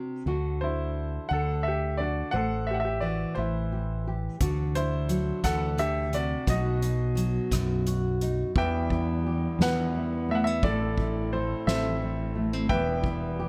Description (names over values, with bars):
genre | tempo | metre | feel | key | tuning
acoustic folk-pop ballad | 58 BPM (dotted quarters) | 6/8 | straight | E minor | A4 = 439 Hz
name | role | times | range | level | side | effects
nylon-string guitar | accompaniment | 0.0-13.5 s | E2 to C5 | -33 LUFS | equal | none
fretless electric bass | bass | 0.3-13.5 s | E1 to E2 | -32 LUFS | equal | none
clear concert grand piano | melody | 0.6-13.5 s | E4 to G5 | -33 LUFS | equal | plate reverb
soft-mallet drum kit | drums | 4.4-13.5 s | hi-hat, kick drum, ride cymbal, rim click, snare drum | -35 LUFS | equal | none
hand-pumped harmonium | sustained chords | 8.5-13.5 s | G3 to E4 | -39 LUFS | equal | none
room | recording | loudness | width
light reverb | none | -28 LUFS | mono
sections
0.3-8.6 A section; 8.6-13.5 B section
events
none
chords
0.3 D7; 2.3 Am7; 4.4 D7; 6.5 B; 8.6 Em; 10.6 Am; 12.7 Em